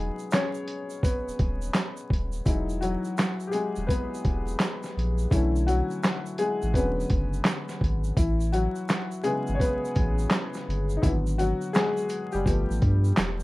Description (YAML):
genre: lo-fi hip hop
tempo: 84 BPM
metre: 4/4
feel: swing 65% on 16ths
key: unclear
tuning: A4 = 440 Hz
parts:
  - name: warm upright piano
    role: accompaniment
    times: 0.0-13.4 s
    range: C#3 to C#5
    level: -29 LUFS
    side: left 2 dB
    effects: low-pass filter
  - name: warm sub bass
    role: bass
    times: 0.0-13.4 s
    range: D#1 to G2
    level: -26 LUFS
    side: equal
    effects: none
  - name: egg shaker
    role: percussion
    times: 0.2-13.4 s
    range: none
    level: -48 LUFS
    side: right 7 dB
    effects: none
  - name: lo-fi sampler-style drum kit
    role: drums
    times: 0.3-13.4 s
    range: handclaps, hi-hat, kick drum, snare drum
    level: -26 LUFS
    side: equal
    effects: overdrive
room: little or no reverb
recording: rough home demo mix, vinyl crackle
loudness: -24 LUFS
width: side -19 dB against mid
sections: 0.0-2.5 A section; 2.5-13.4 B section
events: upright piano solo 0.0-2.5, 2.5-13.4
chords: 0.0 Emaj9 (rootless); 2.5 Emaj9; 5.3 Bm9; 6.7 E13; 8.2 Amaj9; 11.0 G#m7b5; 12.5 G9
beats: 0.32 1.03 1.74 | 2.46 3.17 3.89 4.60 | 5.32 6.03 6.74 7.46 | 8.17 8.89 9.60 10.31 | 11.03 11.74 12.46 13.17